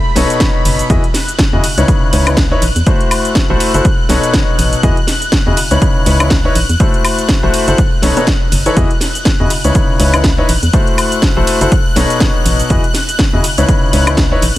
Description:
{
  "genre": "piano house",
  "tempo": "122 BPM",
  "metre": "4/4",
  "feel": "swing 57% on 16ths",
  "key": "unclear",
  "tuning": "A4 = 440 Hz",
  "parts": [
    { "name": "analog string pad", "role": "sustained chords", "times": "0.0-14.6 s", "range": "B5 to F#6", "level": "-22 LUFS", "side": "left 2 dB", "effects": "ensemble chorus, sidechain pumping" },
    { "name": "warm grand piano", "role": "riff", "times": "0.2-14.4 s", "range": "B2 to D#5", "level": "-16 LUFS", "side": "left 2 dB", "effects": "sidechain pumping, digital delay" },
    { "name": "organ-like FM bass", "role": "bass", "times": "0.2-14.5 s", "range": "F#1 to E2", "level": "-15 LUFS", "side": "equal", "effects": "sidechain pumping" },
    { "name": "house drum kit", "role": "drums", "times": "0.2-14.6 s", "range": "hi-hat, ride cymbal, shaker, snare drum, woodblock", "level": "-18 LUFS", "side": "equal", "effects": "overdrive" },
    { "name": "electronic kick drum", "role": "drums", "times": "0.4-14.3 s", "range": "none", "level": "-14 LUFS", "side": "equal", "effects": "overdrive" }
  ],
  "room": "digital ambience",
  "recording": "none",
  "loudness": "-10 LUFS",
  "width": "side -15 dB against mid",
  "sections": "0.0-14.6 A section",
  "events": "none",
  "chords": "0.0 B9; 0.9 Emaj9; 1.6 C#m9; 2.6 Am6; 3.8 B9; 4.8 Emaj9; 5.6 C#m9; 6.6 Am6; 7.8 B9; 8.8 Emaj9; 9.5 C#m9; 10.5 Am6; 11.7 B9; 12.7 Emaj9; 13.4 C#m9",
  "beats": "0.41 | 0.90 1.39 1.88 2.37 | 2.87 3.36 3.85 4.34 | 4.83 5.33 5.82 6.31 | 6.80 7.29 7.78 8.28 | 8.77 9.26 9.75 10.24 | 10.73 11.23 11.72 12.21 | 12.70 13.19 13.69 14.18"
}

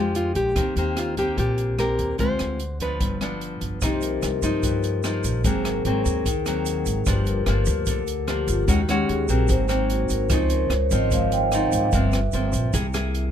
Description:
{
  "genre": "bossa nova",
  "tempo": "148 BPM",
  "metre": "4/4",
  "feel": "straight",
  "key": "Eb major, C minor from 3.8 s",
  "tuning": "A4 = 441 Hz",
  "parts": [
    { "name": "nylon-string guitar", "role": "melody", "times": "0.0-3.6 s", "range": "F4 to C5", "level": "-26 LUFS", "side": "equal", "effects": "none" },
    { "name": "nylon-string guitar", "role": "accompaniment", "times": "0.0-13.3 s", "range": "G2 to Ab4", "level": "-26 LUFS", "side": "left 2 dB", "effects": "none" },
    { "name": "upright bass", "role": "bass", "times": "0.0-13.3 s", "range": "G1 to G2", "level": "-25 LUFS", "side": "equal", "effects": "none" },
    { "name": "open jazz drum kit", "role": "drums", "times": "0.1-13.2 s", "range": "hi-hat, kick drum, rim click", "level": "-29 LUFS", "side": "equal", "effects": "none" },
    { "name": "vibraphone with medium mallets", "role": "accompaniment", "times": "3.8-12.8 s", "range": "Eb4 to G5", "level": "-26 LUFS", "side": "left 1 dB", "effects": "none" },
    { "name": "tube shaker", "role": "percussion", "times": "3.8-13.1 s", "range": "none", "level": "-37 LUFS", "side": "right 9 dB", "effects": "none" }
  ],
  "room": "little or no reverb",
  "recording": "close, detailed microphones",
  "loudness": "-20 LUFS",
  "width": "side -9 dB against mid",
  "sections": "0.0-3.8 A section; 3.8-13.3 B section",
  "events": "vibraphone solo 3.8-13.3",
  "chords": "0.0 Bb6; 0.6 Eb6; 2.2 Dm7b5; 3.0 G7; 3.8 Cm7; 5.4 Ab9; 7.1 Gm7; 8.7 Ebm7; 9.5 Ab9; 10.3 Dbmaj9; 11.9 Gm7; 12.7 C7b13",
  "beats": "0.15 | 0.56 0.96 1.37 1.78 | 2.19 2.60 3.00 3.41 | 3.81 4.22 4.63 5.03 | 5.44 5.84 6.25 6.66 | 7.06 7.46 7.87 8.28 | 8.68 9.09 9.49 9.90 | 10.30 10.71 11.11 11.52 | 11.93 12.33 12.74 13.14"
}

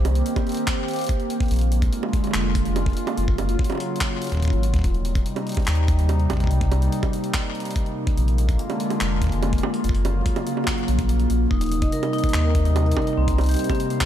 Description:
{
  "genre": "IDM",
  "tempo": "144 BPM",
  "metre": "4/4",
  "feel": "straight",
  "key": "Eb major",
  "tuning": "A4 = 440 Hz",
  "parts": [
    { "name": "warbly tape-like pad", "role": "sustained chords", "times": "0.0-14.1 s", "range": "C3 to G4", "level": "-25 LUFS", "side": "equal", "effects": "chorus, built-in reverb, sidechain pumping" },
    { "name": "warm sub bass", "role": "bass", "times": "0.0-13.6 s", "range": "Eb1 to Eb2", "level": "-21 LUFS", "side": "equal", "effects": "none" },
    { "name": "jungle sampler-style drum kit", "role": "drums", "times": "0.1-14.1 s", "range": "bongos, handclaps, hi-hat", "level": "-30 LUFS", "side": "right 4 dB", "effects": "studio ambience, ping-pong delay" },
    { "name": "electronic kick drum", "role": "drums", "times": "0.4-14.1 s", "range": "none", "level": "-23 LUFS", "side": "equal", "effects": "studio ambience" },
    { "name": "vibraphone with soft mallets", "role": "arpeggios", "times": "11.5-14.1 s", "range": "C4 to Eb5", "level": "-26 LUFS", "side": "left 2 dB", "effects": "digital delay" }
  ],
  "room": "digital ambience",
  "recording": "none",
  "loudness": "-20 LUFS",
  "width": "side -11 dB against mid",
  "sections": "0.0-14.1 A section",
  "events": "kick drops out 11.1-11.5",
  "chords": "0.0 Cm7; 1.5 Bb7; 3.2 Gbmaj7; 4.8 Eb6; 6.5 Cm7; 8.2 Bb7; 9.8 Gbmaj7; 11.5 Eb6; 13.2 Cm7",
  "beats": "0.26 0.68 1.09 | 1.51 1.93 2.34 2.76 | 3.17 3.59 4.01 4.42 | 4.84 5.26 5.67 6.09 | 6.51 6.92 7.34 7.76 | 8.18 8.59 9.01 9.43 | 9.84 10.26 10.68 11.09 | 11.51 11.93 12.34 12.76 | 13.18 13.59 14.01"
}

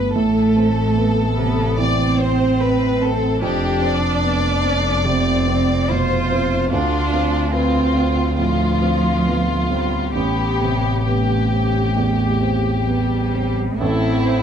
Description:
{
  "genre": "neoclassical piano and strings",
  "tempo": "61-74 BPM",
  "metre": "4/4",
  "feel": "rubato",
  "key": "A minor",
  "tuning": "A4 = 440 Hz",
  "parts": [
    { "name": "rich chamber violin section", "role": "melody", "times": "0.0-14.4 s", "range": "E4 to D5", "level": "-22 LUFS", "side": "left 3 dB", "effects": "none" },
    { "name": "warm baby grand piano", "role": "accompaniment", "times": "0.0-14.4 s", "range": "A1 to B4", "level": "-22 LUFS", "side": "right 3 dB", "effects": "none" },
    { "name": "rich double bass", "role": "bass", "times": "0.0-14.4 s", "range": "F1 to D2", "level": "-22 LUFS", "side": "left 2 dB", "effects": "none" },
    { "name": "rich cello", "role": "second line", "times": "0.1-14.4 s", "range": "F3 to F4", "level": "-22 LUFS", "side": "right 4 dB", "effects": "none" },
    { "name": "rich viola", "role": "accompaniment", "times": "13.8-14.4 s", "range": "A4 to C5", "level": "-27 LUFS", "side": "left 1 dB", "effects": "none" },
    { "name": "hand-pumped harmonium", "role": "sustained chords", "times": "13.8-14.4 s", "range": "A3 to E5", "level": "-32 LUFS", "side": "right 2 dB", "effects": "none" }
  ],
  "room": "light reverb",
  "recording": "dark, warm production, nothing above 10.7 kHz",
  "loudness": "-16 LUFS",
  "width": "side -8 dB against mid",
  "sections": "0.0-13.8 A section",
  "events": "none",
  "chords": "0.2 Am; 3.4 F5; 6.7 Dm7; 10.2 Am7; 13.8 Am",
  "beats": "| 0.15 0.97 1.78 2.60 | 3.42 4.23 5.04 5.90 | 6.72 7.53 8.38 9.25 | 10.15 11.07 11.97 12.87 | 13.81"
}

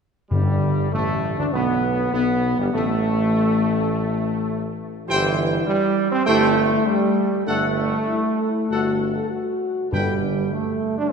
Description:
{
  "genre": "classical, ceremonial fanfare",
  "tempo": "100 BPM",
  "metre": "4/4",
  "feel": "straight",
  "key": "G major",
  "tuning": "A4 = 439 Hz",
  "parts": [
    { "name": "clear trumpet section", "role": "melody", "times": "0.3-10.1 s", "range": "G3 to G5", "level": "-27 LUFS", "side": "left 2 dB", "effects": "none" },
    { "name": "mellow French horn section", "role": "sustained chords", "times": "0.3-10.1 s", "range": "G3 to A4", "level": "-28 LUFS", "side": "left 5 dB", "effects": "none" },
    { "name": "mellow trombone section", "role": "sustained chords", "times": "0.3-11.1 s", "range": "E3 to D4", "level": "-22 LUFS", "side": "right 2 dB", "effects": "none" },
    { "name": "clear tuba", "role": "bass", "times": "0.3-10.4 s", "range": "G1 to D2", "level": "-27 LUFS", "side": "right 2 dB", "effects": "none" },
    { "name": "timpani", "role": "percussion", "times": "0.3-1.2, 9.9-10.8 s", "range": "G2", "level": "-24 LUFS", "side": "left 2 dB", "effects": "none" }
  ],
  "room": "wet church reverb, RT60 2.8 s",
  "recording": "none",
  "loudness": "-19 LUFS",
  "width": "side -6 dB against mid",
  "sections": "0.3-11.1 A section",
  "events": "none",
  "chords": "0.3 Gadd9; 5.1 C/G (rootless); 7.5 D/G (rootless); 9.9 Gsus2",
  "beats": "| 0.31 0.92 1.53 2.13 | 2.73 3.32 3.91 4.50 | 5.08 5.67 6.26 6.86 | 7.47 8.09 8.70 9.31 | 9.92 10.53"
}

